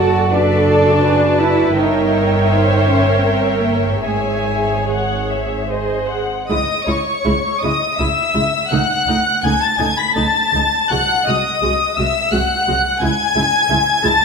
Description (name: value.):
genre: classical, slow romantic movement for string orchestra.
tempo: 70-89 BPM.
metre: 3/4.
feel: rubato.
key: C# minor.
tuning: A4 = 442 Hz.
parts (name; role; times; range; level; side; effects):
warm studio violin section; melody; 0.0-14.2 s; G#4 to B6; -20 LUFS; left 2 dB; none.
dark studio violin section; second line; 0.0-14.2 s; C#5 to B5; -20 LUFS; left 4 dB; none.
warm studio viola section; accompaniment; 0.0-14.1 s; G#3 to Db5; -20 LUFS; right 1 dB; none.
dark studio cello section; bass; 0.0-14.1 s; B#1 to F#4; -22 LUFS; right 2 dB; none.
dark studio double bass section; bass; 0.0-14.1 s; F#1 to C#2; -21 LUFS; right 2 dB; none.
room: wet scoring stage reverb, RT60 1.6 s.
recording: none.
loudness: -14 LUFS.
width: side -5 dB against mid.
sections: 0.0-6.5 A section; 6.5-14.2 B section.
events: none.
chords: 0.0 D/F#; 1.8 Gdim7; 4.0 C#m/G#; 5.7 G#; 6.5 C#m; 8.7 D#m7b5/C#; 10.9 G#7/B#; 13.0 C#m.